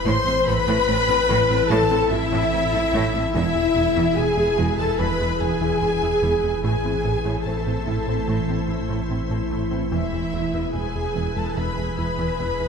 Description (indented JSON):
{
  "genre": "cinematic, hybrid orchestral and electronic film score",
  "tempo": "73 BPM",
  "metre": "4/4",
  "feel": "straight",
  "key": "A harmonic minor",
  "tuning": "A4 = 441 Hz",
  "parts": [
    { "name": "rich symphonic violin section", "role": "melody", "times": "0.0-12.7 s", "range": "E5 to C6", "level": "-31 LUFS", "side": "left 3 dB", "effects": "none" },
    { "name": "warm symphonic violin section", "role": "second line", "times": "0.0-12.7 s", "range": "E5 to C6", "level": "-29 LUFS", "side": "left 4 dB", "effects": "none" },
    { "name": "warm symphonic viola section", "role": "accompaniment", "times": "0.0-12.7 s", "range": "E4 to C5", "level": "-28 LUFS", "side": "right 1 dB", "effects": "none" },
    { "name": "soft additive organ-like pad", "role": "sustained chords", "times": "0.0-12.7 s", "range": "E3 to C5", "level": "-29 LUFS", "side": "equal", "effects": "ensemble chorus, built-in reverb" },
    { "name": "warm French horn section", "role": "sustained chords", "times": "0.0-12.7 s", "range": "E4 to C5", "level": "-24 LUFS", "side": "left 4 dB", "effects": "none" },
    { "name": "rubbery square bass", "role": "riff", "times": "0.0-12.7 s", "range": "E2 to A2", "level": "-29 LUFS", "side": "right 2 dB", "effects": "none" },
    { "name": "saturated sub bass", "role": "bass", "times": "0.0-12.7 s", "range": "E1 to A1", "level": "-32 LUFS", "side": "equal", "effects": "none" },
    { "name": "tight sequenced synth", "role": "arpeggios", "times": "0.1-12.7 s", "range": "E3 to A4", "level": "-32 LUFS", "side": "left 1 dB", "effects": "chorus, digital delay" },
    { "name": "rich symphonic cello section", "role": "bass", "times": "0.1-12.7 s", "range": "E2 to A2", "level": "-30 LUFS", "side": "right 4 dB", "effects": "none" },
    { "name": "rich symphonic double bass section", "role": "bass", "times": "0.1-12.5 s", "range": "E1 to A1", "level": "-31 LUFS", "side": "right 4 dB", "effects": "none" }
  ],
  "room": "wet concert hall reverb, RT60 2.0 s",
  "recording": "none",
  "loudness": "-19 LUFS",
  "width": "side -6 dB against mid",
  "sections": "0.0-12.7 A section",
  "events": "none",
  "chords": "0.1 Am; 3.3 E; 6.6 Am; 9.9 E"
}